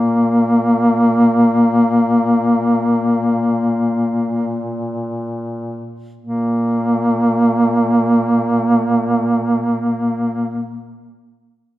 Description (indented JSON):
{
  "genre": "caucasian folk, Caucasian lament",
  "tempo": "free time",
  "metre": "none",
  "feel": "none",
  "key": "unclear",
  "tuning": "A4 = 440 Hz",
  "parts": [
    { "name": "mellow duduk", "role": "melody", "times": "0.0-10.8 s", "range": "Bb3", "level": "-14 LUFS", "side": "equal", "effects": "none" },
    { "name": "mellow duduk", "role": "drone", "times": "0.0-10.8 s", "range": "Bb2", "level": "-24 LUFS", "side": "equal", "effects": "none" }
  ],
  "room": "moderate scoring stage reverb, RT60 1.5 s",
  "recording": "recorded in a church or concert hall",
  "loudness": "-14 LUFS",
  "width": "side -15 dB against mid",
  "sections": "0.0-6.2 A section; 6.2-11.8 B section",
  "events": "slowing down 0.0-6.2",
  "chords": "none"
}